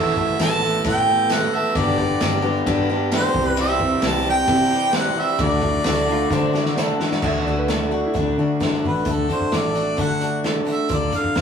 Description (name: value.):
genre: folk rock and heartland rock.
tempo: 132 BPM.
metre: 4/4.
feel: straight.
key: D mixolydian.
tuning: A4 = 440 Hz.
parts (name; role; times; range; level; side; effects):
clear harmonica; melody; 0.0-11.4 s; A4 to A5; -22 LUFS; right 1 dB; none.
picked swing-style acoustic guitar; accompaniment; 0.0-11.4 s; G2 to A4; -27 LUFS; left 3 dB; none.
electric guitar through a small old amp; riff; 0.0-11.4 s; G2 to A4; -23 LUFS; right 2 dB; none.
fingered electric bass; bass; 0.0-11.4 s; G1 to D3; -25 LUFS; left 1 dB; none.
unplugged drum kit; drums; 0.2-11.4 s; crash cymbal, hi-hat, kick drum, ride cymbal, snare drum; -25 LUFS; equal; none.
tambourine; percussion; 0.4-6.9 s; none; -38 LUFS; right 5 dB; none.
electric slide guitar; second line; 6.1-9.0 s; D4 to E5; -27 LUFS; right 2 dB; none.
room: moderate studio reverb, RT60 0.6 s.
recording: rough rehearsal-room recording, small room ambience.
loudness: -18 LUFS.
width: side -7 dB against mid.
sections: 0.0-7.2 A section; 7.2-9.1 B section; 9.1-11.4 C section.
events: drum fill 6.3-7.2.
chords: 0.0 Asus2; 1.8 G; 3.4 C; 5.4 D; 10.9 Bb/D.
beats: 0.40 0.85 1.31 | 1.76 2.22 2.68 3.13 | 3.59 4.04 4.50 4.96 | 5.41 5.87 6.32 6.78 | 7.24 7.69 8.15 8.61 | 9.07 9.52 9.98 10.44 | 10.90 11.36.